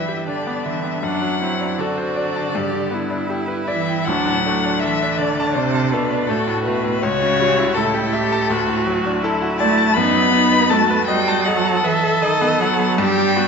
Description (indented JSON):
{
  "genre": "classical, slow romantic movement for piano quartet",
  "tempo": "80 BPM",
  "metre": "4/4",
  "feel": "rubato",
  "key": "unclear",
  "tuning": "A4 = 440 Hz",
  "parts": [
    { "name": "warm violin", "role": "melody", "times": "0.0-13.5 s", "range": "A4 to B5", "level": "-21 LUFS", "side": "left 7 dB", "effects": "none" },
    { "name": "rich cello", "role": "second line", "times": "0.0-13.5 s", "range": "A2 to B3", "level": "-22 LUFS", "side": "right 5 dB", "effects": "none" },
    { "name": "bright grand piano", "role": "accompaniment", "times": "0.0-13.5 s", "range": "C#2 to A5", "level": "-22 LUFS", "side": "left 2 dB", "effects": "none" },
    { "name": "clear viola", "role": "accompaniment", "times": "0.0-13.5 s", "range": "D4 to A4", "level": "-23 LUFS", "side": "right 2 dB", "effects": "none" }
  ],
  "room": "wet recital hall reverb, RT60 1.3 s",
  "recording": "nothing above 7.9 kHz",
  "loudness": "-16 LUFS",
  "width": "side -5 dB against mid",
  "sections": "0.0-13.5 A section",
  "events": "none",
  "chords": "0.0 G; 1.0 D7/F#; 2.5 G; 4.1 D; 7.0 A7/C#; 8.5 D; 10.0 B7/F#",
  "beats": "0.27 | 1.03 1.79 2.54 3.30 | 4.06 4.81 5.55 6.28 | 7.01 7.75 8.49 9.22 | 9.96 10.71 11.46 12.22 | 12.99"
}